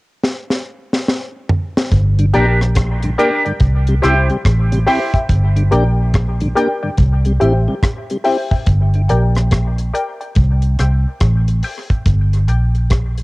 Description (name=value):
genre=dub reggae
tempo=71 BPM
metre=4/4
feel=swing 63% on 16ths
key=G dorian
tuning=A4 = 444 Hz
part: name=deep reggae drum kit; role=drums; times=0.2-13.2 s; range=hi-hat, kick drum, rim click, snare drum, toms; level=-17 LUFS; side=equal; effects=cassette tape
part: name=vintage muted fingered electric bass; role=bass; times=1.9-13.2 s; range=G1 to C2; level=-14 LUFS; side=equal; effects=none
part: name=mellow tonewheel organ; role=accompaniment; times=2.2-9.0 s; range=G2 to G4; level=-21 LUFS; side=left 1 dB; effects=slow rotary speaker, high-pass filter, cassette tape
part: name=electric guitar with an envelope filter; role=accompaniment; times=2.3-5.1 s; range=D4 to C5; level=-22 LUFS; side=right 2 dB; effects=lush chorus, cassette tape, dub echo
part: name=filtered dub chord stab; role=stabs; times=2.3-12.8 s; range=G4 to G5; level=-20 LUFS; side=left 2 dB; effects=chorus, high-pass filter, cassette tape, dub echo
room=small room reverb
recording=home recording on cassette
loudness=-13 LUFS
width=side -22 dB against mid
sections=0.0-1.9 A section; 1.9-13.2 B section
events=drum fill 0.2-1.9; filter sweep 5.3-13.2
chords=0.0 N.C.; 1.9 Gm; 3.6 C; 5.3 Gm; 7.0 C; 8.7 Gm; 10.4 C; 12.1 Gm